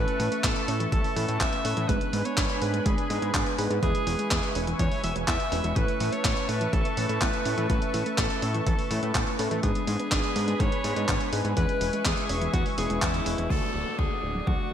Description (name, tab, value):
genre	italo disco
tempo	124 BPM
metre	4/4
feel	straight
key	unclear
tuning	A4 = 440 Hz
part	edgy alto saxophone	melody	0.0-14.7 s	E4 to E5	-32 LUFS	equal	digital delay
part	warm analog pad	sustained chords	0.0-14.7 s	A3 to D6	-34 LUFS	right 1 dB	chorus
part	soft round pluck	arpeggios	0.0-14.6 s	E3 to G#4	-35 LUFS	right 1 dB	chorus, digital delay
part	barky tine electric piano	stabs	0.0-14.7 s	G#3 to D5	-34 LUFS	left 2 dB	wide subtle chorus
part	fat analog bass	bass	0.0-14.7 s	D1 to A2	-31 LUFS	equal	tube saturation
part	gated 80s digital drum machine	drums	0.1-14.7 s	crash cymbal, handclaps, hi-hat	-32 LUFS	equal	gated reverb, low-pass filter on hats, small room ambience, low-pass filter on snare, low-pass filter on cymbals
part	electronic kick drum	drums	0.4-14.6 s	none	-29 LUFS	equal	overdrive, small room ambience
part	downlifter	sound effects	13.5-14.7 s	none	-36 LUFS	left 1 dB	none
room	light reverb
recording	bright 1980s-style digital production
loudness	-24 LUFS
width	side -9 dB against mid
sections	0.0-13.5 A section; 13.5-14.7 B section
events	none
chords	0.0 Aadd9; 1.9 G#dim; 3.8 E6; 5.8 Aadd9; 9.6 G#dim; 11.6 E6; 13.5 D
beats	0.44 0.92 1.41 | 1.89 2.38 2.86 3.34 | 3.83 4.31 4.79 5.28 | 5.76 6.25 6.73 7.21 | 7.70 8.18 8.66 9.15 | 9.63 10.12 10.60 11.09 | 11.57 12.05 12.54 13.02 | 13.50 13.99 14.47